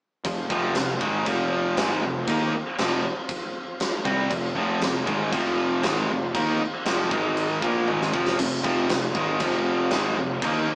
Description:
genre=hard rock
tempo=118 BPM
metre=4/4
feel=straight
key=F minor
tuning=A4 = 442 Hz
part: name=overdriven tonewheel organ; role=sustained chords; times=0.2-10.8 s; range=F3 to Bb4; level=-34 LUFS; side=equal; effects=none
part: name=overdriven semi-hollow guitar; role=riff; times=0.2-10.7 s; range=F2 to Eb4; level=-27 LUFS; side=equal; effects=none
part: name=fuzz picked electric bass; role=bass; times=0.2-10.7 s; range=F1 to Eb2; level=-31 LUFS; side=equal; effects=overdrive
part: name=huge arena drum kit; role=drums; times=0.2-10.5 s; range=crash cymbal, kick drum, snare drum, toms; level=-28 LUFS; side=equal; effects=none
part: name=tight distorted guitar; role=riff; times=0.3-10.7 s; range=F2 to Eb4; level=-26 LUFS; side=equal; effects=distortion
room=wet studio reverb, RT60 0.8 s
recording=band playing live in one room, small speaker sound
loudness=-22 LUFS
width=side -35 dB against mid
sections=0.2-10.8 A section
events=drum fill 7.9-8.4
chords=0.2 Fm; 7.1 Ab5; 7.6 Fm

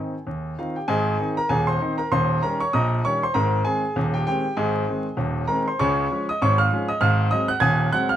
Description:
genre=ragtime piano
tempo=98 BPM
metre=2/4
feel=swing 57% on 16ths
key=Ab major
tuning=A4 = 444 Hz
part: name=clear concert grand piano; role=solo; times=0.0-8.2 s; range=Eb1 to Ab6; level=-20 LUFS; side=equal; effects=none
room=moderate club reverb, RT60 0.8 s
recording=minimal, uncompressed stereo recording, vinyl crackle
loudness=-20 LUFS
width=side -10 dB against mid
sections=0.9-8.2 A section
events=none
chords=0.0 Ab; 2.1 Eb7; 3.3 Ab; 5.8 Db; 7.0 Ab7

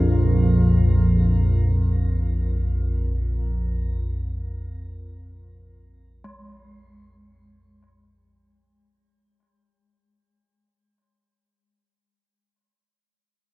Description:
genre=dark ambient drone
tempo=free time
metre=none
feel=none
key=unclear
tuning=A4 = 440 Hz
part: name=dark analog pad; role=sustained chords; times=0.0-8.2 s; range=C4 to Bb4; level=-36 LUFS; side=equal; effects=chorus, phaser, shimmer reverb
part: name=gamelan-type bronze metallophone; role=arpeggios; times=0.0-12.6 s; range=Ab3 to Ab4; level=-46 LUFS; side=left 1 dB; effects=tape echo, shimmer reverb
part: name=analog drone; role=drone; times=0.0-8.3 s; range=Bb1 to F2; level=-19 LUFS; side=equal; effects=chorus, phaser
room=light reverb, studio ambience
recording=worn, warbling old tape, cassette tape, warbly pitch drift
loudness=-19 LUFS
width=side -20 dB against mid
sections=0.0-8.2 A section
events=fade-out on analog synth pad 0.0-8.2; fade-out 0.0-8.2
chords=0.0 Bb5

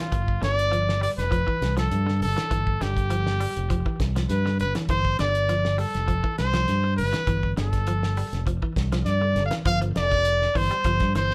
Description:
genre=afrobeat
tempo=101 BPM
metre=4/4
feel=straight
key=G mixolydian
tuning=A4 = 437 Hz
part: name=bright trumpet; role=melody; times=0.0-11.3 s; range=F4 to F5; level=-28 LUFS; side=equal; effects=none
part: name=clean electric guitar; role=arpeggios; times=0.0-11.3 s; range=D3 to G3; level=-34 LUFS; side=equal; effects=slapback echo
part: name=fingered electric bass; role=bass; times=0.1-11.3 s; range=F1 to G2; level=-28 LUFS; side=equal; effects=none
part: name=damped 70s drum kit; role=drums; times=0.1-11.3 s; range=hi-hat, kick drum, snare drum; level=-32 LUFS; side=equal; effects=none
room=light reverb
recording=band playing live in one room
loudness=-24 LUFS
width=mono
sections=0.0-9.7 A section; 9.7-11.3 B section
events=none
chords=0.0 G7(no3); 9.7 G7sus4

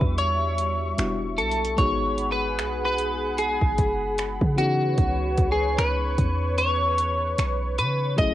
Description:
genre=contemporary R&B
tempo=75 BPM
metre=4/4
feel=swing 58% on 16ths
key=unclear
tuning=A4 = 444 Hz
part: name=clean electric guitar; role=melody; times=0.0-8.3 s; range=F#4 to D#5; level=-25 LUFS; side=left 1 dB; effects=analog chorus
part: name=FM electric piano with auto-pan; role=accompaniment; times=0.0-8.3 s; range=E3 to G#4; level=-32 LUFS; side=left 3 dB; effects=cassette tape
part: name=warm analog pad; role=sustained chords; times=0.0-8.3 s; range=G3 to C#6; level=-32 LUFS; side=right 1 dB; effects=chorus, cassette tape
part: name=clean 808-style bass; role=bass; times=0.0-8.3 s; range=E1 to C#3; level=-27 LUFS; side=equal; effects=none
part: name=smooth R&B drum kit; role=drums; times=0.0-8.3 s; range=finger snaps, hi-hat, kick drum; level=-26 LUFS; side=equal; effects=overdrive
room=light reverb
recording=home recording on cassette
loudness=-21 LUFS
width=side -13 dB against mid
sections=0.0-8.3 A section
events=none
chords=0.0 Em7; 1.8 G#m7; 4.6 C#m7

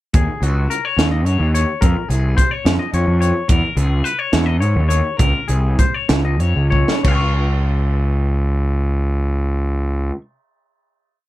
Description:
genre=math rock and midwest emo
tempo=61-72 BPM (dotted quarters)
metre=6/8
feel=straight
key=Db major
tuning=A4 = 440 Hz
part: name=fuzz picked electric bass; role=bass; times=0.1-10.1 s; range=C2 to G#2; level=-17 LUFS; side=equal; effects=overdrive
part: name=crisp fusion drum kit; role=drums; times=0.1-7.2 s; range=crash cymbal, hi-hat, kick drum, snare drum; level=-19 LUFS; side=right 1 dB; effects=none
part: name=twangy electric guitar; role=arpeggios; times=0.2-10.2 s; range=Gb4 to Db6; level=-22 LUFS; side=left 6 dB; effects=none
room=small room ambience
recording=none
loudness=-15 LUFS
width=side -16 dB against mid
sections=0.1-7.0 A section; 7.0-11.0 final chord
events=slowing down 3.5-7.0; drum fill 6.7-7.0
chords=0.1 Ebm7; 1.8 Dbmaj7; 3.5 E6; 5.2 Dbmaj7(no3); 7.0 Db

